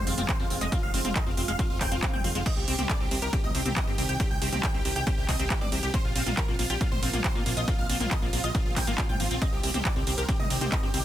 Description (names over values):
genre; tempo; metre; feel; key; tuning
uplifting trance; 138 BPM; 4/4; straight; C minor; A4 = 443 Hz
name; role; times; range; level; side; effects
big supersaw lead; melody; 0.0-11.0 s; F4 to G5; -32 LUFS; right 1 dB; sidechain pumping, tape echo
lush unison pad; sustained chords; 0.0-11.0 s; Eb3 to C4; -39 LUFS; right 1 dB; chorus, sidechain pumping
fat analog bass; bass; 0.0-11.0 s; F1 to Bb2; -32 LUFS; equal; sidechain pumping
liquid acid bass; arpeggios; 0.1-11.0 s; Ab3 to G4; -36 LUFS; left 2 dB; lush chorus, sidechain pumping, tape echo
techno drum kit; drums; 0.1-11.0 s; crash cymbal, handclaps, hi-hat, ride cymbal, toms; -32 LUFS; right 1 dB; sidechain pumping on hats, sidechain pumping on toms, sidechain pumping on cymbals
electronic kick drum; drums; 0.3-10.8 s; none; -28 LUFS; equal; none
swell; sound effects; 1.7-2.5 s; none; -46 LUFS; right 2 dB; none
room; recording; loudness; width
digital ambience; dense, heavily limited modern master; -24 LUFS; side -12 dB against mid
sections
0.0-11.0 A section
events
swell 1.7-2.5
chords
0.0 Fm; 2.5 Cm; 5.9 Bbsus2; 9.4 Cm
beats
0.29 | 0.72 1.16 1.59 2.02 | 2.46 2.90 3.33 3.76 | 4.20 4.63 5.07 5.50 | 5.94 6.37 6.81 7.24 | 7.68 8.11 8.55 8.98 | 9.42 9.85 10.29 10.72